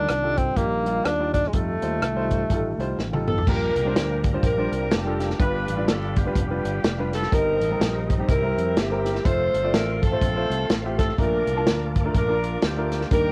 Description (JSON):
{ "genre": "uptempo gospel", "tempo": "124 BPM", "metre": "4/4", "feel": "swing 60% on 8ths", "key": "Bb major", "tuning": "A4 = 440 Hz", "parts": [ { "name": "breathy tenor saxophone", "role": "melody", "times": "0.0-3.0 s", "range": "Ab3 to D4", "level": "-27 LUFS", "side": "equal", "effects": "cassette tape" }, { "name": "clear grand piano", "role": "accompaniment", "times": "0.0-13.3 s", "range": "G2 to A5", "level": "-31 LUFS", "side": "equal", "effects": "cassette tape" }, { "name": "tonewheel organ", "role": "sustained chords", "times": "0.0-13.3 s", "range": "Eb3 to D6", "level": "-38 LUFS", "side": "equal", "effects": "none" }, { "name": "fingered electric bass", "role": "bass", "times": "0.0-13.3 s", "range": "F1 to F2", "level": "-31 LUFS", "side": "equal", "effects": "none" }, { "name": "warm soul drum kit", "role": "drums", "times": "0.1-13.2 s", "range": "crash cymbal, hi-hat, kick drum, rim click, snare drum, toms", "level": "-26 LUFS", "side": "equal", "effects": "cassette tape" }, { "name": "warm saxophone section", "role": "melody", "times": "3.3-13.3 s", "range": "Bb3 to C5", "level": "-28 LUFS", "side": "equal", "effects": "cassette tape, tape echo" } ], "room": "moderate booth ambience, RT60 0.2 s", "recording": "home recording on cassette", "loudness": "-23 LUFS", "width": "mono", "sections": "0.0-3.5 A section; 3.5-13.3 B section", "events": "drum fill 3.0-3.5", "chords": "0.0 Ebmaj9; 1.5 F9; 3.5 Bb6; 5.4 G7; 7.3 Cm7/G; 8.3 C7; 9.3 F; 11.2 Bbmaj7" }